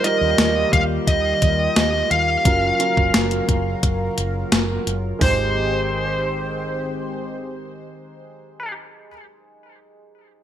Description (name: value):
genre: 1980s-style pop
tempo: 87 BPM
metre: 4/4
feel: straight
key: Ab major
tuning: A4 = 440 Hz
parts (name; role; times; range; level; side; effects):
- smooth overdriven lead guitar; melody; 0.0-8.7 s; C5 to F5; -22 LUFS; equal; digital delay
- warm concert grand piano; accompaniment; 0.0-10.4 s; Gb3 to C5; -27 LUFS; right 4 dB; analog chorus
- chorused pulse-width pad; sustained chords; 0.0-8.7 s; Db3 to C5; -28 LUFS; left 1 dB; none
- clean 12-bit digital drum machine; drums; 0.0-5.4 s; hi-hat, kick drum, snare drum, toms; -19 LUFS; left 1 dB; gated reverb
- vintage muted fingered electric bass; bass; 0.2-9.1 s; Gb1 to Eb2; -26 LUFS; equal; none
room: moderate plate reverb, RT60 1.3 s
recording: bright 1980s-style digital production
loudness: -17 LUFS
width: side -10 dB against mid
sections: 0.0-5.2 A section; 5.2-8.0 B section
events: none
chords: 0.0 Ebadd9; 2.5 Gbmaj7; 5.2 Abmaj7